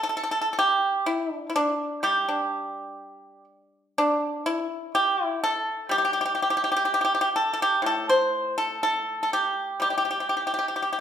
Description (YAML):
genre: chinese traditional, Chinese solo plucked strings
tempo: 61 BPM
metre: 4/4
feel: rubato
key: unclear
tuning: A4 = 441 Hz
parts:
  - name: pipa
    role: solo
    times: 0.0-11.0 s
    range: A2 to C5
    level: -23 LUFS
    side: equal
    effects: none
room: wet large studio reverb, RT60 1.2 s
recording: band playing live in one room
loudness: -22 LUFS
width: side -9 dB against mid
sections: 0.0-11.0 A section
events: none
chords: none